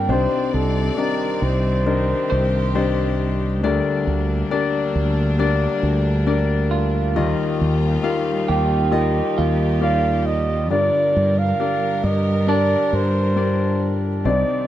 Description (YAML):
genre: acoustic folk-pop ballad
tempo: 68 BPM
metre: 4/4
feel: straight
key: G minor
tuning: A4 = 436 Hz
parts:
  - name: warm grand piano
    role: accompaniment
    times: 0.0-14.7 s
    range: G1 to F5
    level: -22 LUFS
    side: left 5 dB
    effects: none
  - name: rich chamber string section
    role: sustained chords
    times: 0.0-14.7 s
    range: Eb3 to D5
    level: -29 LUFS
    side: right 1 dB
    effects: none
  - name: electric guitar through a small old amp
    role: arpeggios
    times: 0.0-14.7 s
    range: D4 to C5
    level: -27 LUFS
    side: right 6 dB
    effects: tremolo
  - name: mellow fretless electric bass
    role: bass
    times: 0.0-14.4 s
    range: C2 to G2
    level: -20 LUFS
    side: right 1 dB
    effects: none
  - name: breathy flugelhorn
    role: melody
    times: 0.1-3.2, 9.8-14.7 s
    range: A4 to F5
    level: -22 LUFS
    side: right 2 dB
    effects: none
room: studio ambience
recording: dry, close 1970s-style studio recording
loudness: -17 LUFS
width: side -12 dB against mid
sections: 0.0-14.7 A section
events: none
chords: 0.1 Cmadd9; 3.6 Gm/D; 7.2 Ebadd9; 10.7 Gm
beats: | 0.08 0.97 1.85 2.74 | 3.62 4.50 5.39 6.27 | 7.16 8.04 8.93 9.82 | 10.71 11.60 12.48 13.37 | 14.25